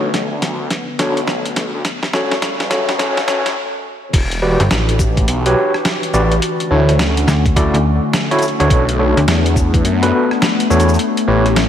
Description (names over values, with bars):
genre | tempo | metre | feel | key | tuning
glitch hop | 105 BPM | 4/4 | swing 63% on 16ths | E dorian | A4 = 440 Hz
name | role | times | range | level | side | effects
warbly tape-like pad | sustained chords | 0.0-11.7 s | C#3 to G4 | -21 LUFS | left 3 dB | chorus, built-in reverb, vintage 12-bit sampler grit, sidechain pumping
overdriven tine electric piano | stabs | 0.0-11.5 s | C#4 to D5 | -18 LUFS | equal | medium tremolo, sidechain pumping, analog delay
phased detuned saw bass | bass | 0.0-11.7 s | E1 to F#2 | -17 LUFS | equal | phaser, high-pass filter
boom bap sampler-style drum kit | drums | 0.1-11.7 s | crash cymbal, hi-hat, rim click, shaker, snare drum | -20 LUFS | equal | none
electronic kick drum | drums | 4.1-9.8 s | none | -15 LUFS | equal | none
slap-like FM bass | bass | 4.6-9.3 s | G1 to D2 | -15 LUFS | equal | none
room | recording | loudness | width
moderate lush hall reverb, RT60 1.9 s | dreamy mix soaked in reverb, vinyl crackle, high-pass filter | -13 LUFS | side -9 dB against mid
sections
0.0-4.1 A section; 4.1-11.7 B section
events
build-up 0.0-4.1; drum fill 0.0-3.6; filter sweep on ambient pad 0.0-4.1; stop 3.6-4.1; drop 4.1-11.7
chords
0.0 Bm7; 1.9 A7; 4.1 Em9; 6.4 Dmaj7; 8.7 Bm7; 11.0 A7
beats
0.14 0.71 1.28 | 1.85 2.42 2.99 3.56 | 4.14 4.71 5.28 5.85 | 6.42 6.99 7.57 8.14 | 8.71 9.28 9.85 10.42 | 10.99 11.56